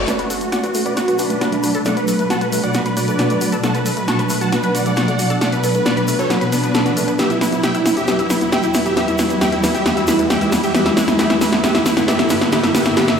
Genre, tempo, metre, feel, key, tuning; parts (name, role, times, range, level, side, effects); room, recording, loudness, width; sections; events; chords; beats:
uplifting trance; 135 BPM; 4/4; straight; B minor; A4 = 436 Hz
shimmering ambient pad; sustained chords; 0.0-13.2 s; E2 to G4; -21 LUFS; equal; chorus, built-in reverb
reverse cymbal and riser; sound effects; 0.0-13.2 s; -26 LUFS; right 1 dB
supersaw chords; melody; 0.1-13.2 s; D4 to C#6; -20 LUFS; equal; wide subtle chorus, low-pass filter, ping-pong delay
analog pluck; arpeggios; 0.1-13.2 s; A3 to E5; -24 LUFS; left 1 dB; chorus, ping-pong delay
punchy analog drum machine; drums; 0.1-13.2 s; hi-hat, snare drum; -20 LUFS; equal; overdrive
egg shaker; percussion; 0.1-13.2 s; -33 LUFS; left 2 dB
wet lush hall reverb, RT60 2.2 s; played on a big sound system in a bare room, large studio reverb; -15 LUFS; side -7 dB against mid
0.1-13.2 A section
build-up 0.1-13.2; drum fill 0.1-13.2; riser 0.1-13.2; filter sweep on synth pluck 0.1-13.2
0.1 Bm7; 7.2 Emadd9; 10.7 G
| 0.08 0.53 0.97 1.41 | 1.86 2.30 2.75 3.19 | 3.64 4.08 4.53 4.97 | 5.41 5.86 6.30 6.75 | 7.19 7.64 8.08 8.53 | 8.97 9.41 9.86 10.30 | 10.75 11.19 11.64 12.08 | 12.53 12.97